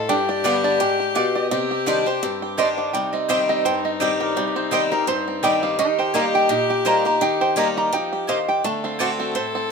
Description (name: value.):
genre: bluegrass.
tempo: 168 BPM.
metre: 4/4.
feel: swing 55% on 8ths.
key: C minor.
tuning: A4 = 440 Hz.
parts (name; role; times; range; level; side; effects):
lap resonator guitar; melody; 0.0-9.2 s; Bb4 to Bb5; -23 LUFS; right 2 dB; none.
rich fiddle; second line; 0.0-9.7 s; Eb4 to A4; -25 LUFS; left 5 dB; none.
picked swing-style acoustic guitar; accompaniment; 0.0-9.7 s; G2 to G4; -24 LUFS; left 3 dB; none.
bluegrass banjo; arpeggios; 0.0-9.7 s; G3 to C5; -26 LUFS; right 4 dB; none.
mandolin; stabs; 0.4-9.1 s; Bb3 to C6; -26 LUFS; right 2 dB; none.
room: moderate studio reverb, RT60 0.9 s.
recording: minimal, uncompressed stereo recording.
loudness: -18 LUFS.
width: side -5 dB against mid.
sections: 0.0-2.9 A section; 2.9-9.7 A section.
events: none.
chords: 0.1 G; 1.5 Cmadd9; 2.9 Cm; 5.8 Eb; 8.6 D7.